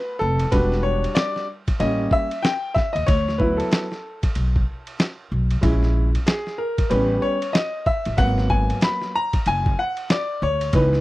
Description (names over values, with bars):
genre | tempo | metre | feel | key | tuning
hip hop, jazz-hop | 94 BPM | 4/4 | swing 61% on 16ths | unclear | A4 = 440 Hz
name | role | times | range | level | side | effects
warm concert grand piano | accompaniment | 0.0-11.0 s | E3 to B5 | -22 LUFS | left 1 dB | none
upright bass | bass | 0.2-11.0 s | E1 to D#2 | -21 LUFS | equal | none
lo-fi sampler-style drum kit | drums | 0.4-11.0 s | hi-hat, kick drum, ride cymbal, snare drum | -22 LUFS | equal | none
room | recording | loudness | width
little or no reverb | dry, close 1970s-style studio recording | -19 LUFS | side -18 dB against mid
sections
0.0-11.0 A section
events
grand piano solo 0.0-11.0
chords
0.0 Gmaj9 (rootless); 0.5 Em7; 1.8 A7b9; 3.1 D69; 5.6 A#m7b5; 6.9 A9; 8.2 G#m9